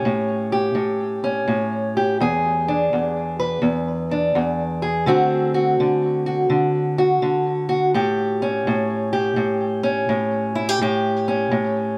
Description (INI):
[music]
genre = blues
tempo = 84 BPM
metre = 4/4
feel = swing 65% on 8ths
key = A mixolydian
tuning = A4 = 440 Hz
[part]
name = fingerpicked steel-string acoustic guitar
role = solo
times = 0.0-12.0 s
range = E2 to B4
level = -21 LUFS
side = equal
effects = tape echo
[sound]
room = moderate studio reverb, RT60 0.8 s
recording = none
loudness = -21 LUFS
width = mono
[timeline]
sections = 0.0-12.0 A section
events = none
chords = 0.0 A7; 2.2 E7; 5.1 D7; 7.9 A7